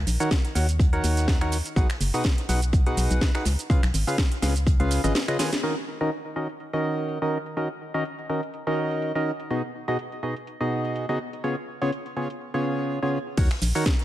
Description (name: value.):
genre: piano house.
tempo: 124 BPM.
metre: 4/4.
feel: swing 55% on 16ths.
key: Eb minor.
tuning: A4 = 441 Hz.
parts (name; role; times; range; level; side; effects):
organ-like FM bass; bass; 0.0-5.1, 13.4-13.7 s; F#1 to Eb2; -24 LUFS; equal; sidechain pumping.
house drum kit; drums; 0.1-14.0 s; crash cymbal, finger snaps, hi-hat, shaker, snare drum; -30 LUFS; equal; low-pass filter on snare, low-pass filter on perc, low-pass filter on hats, low-pass filter on cymbals, low-pass filter on room.
vintage drum kit; drums; 0.1-5.5, 13.4-14.0 s; hi-hat, snare drum; -41 LUFS; right 2 dB; none.
percussive organ stab; riff; 0.2-13.8 s; B2 to Ab5; -26 LUFS; equal; chorus, sidechain pumping, digital delay.
electronic kick drum; drums; 0.3-4.8, 13.4-14.0 s; none; -21 LUFS; equal; none.
room: light reverb, digital ambience.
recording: none.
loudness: -23 LUFS.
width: side -14 dB against mid.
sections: 0.0-5.6 A section; 5.6-13.4 B section.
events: break 5.2-5.6; drum fill 5.4; band accent 5.5; filter sweep on synth stab 5.6-13.4.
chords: 0.0 Ebm7; 1.8 B6; 3.5 Db7; 5.6 Ebm7; 9.5 B6; 11.2 Db7; 13.4 Ebm7.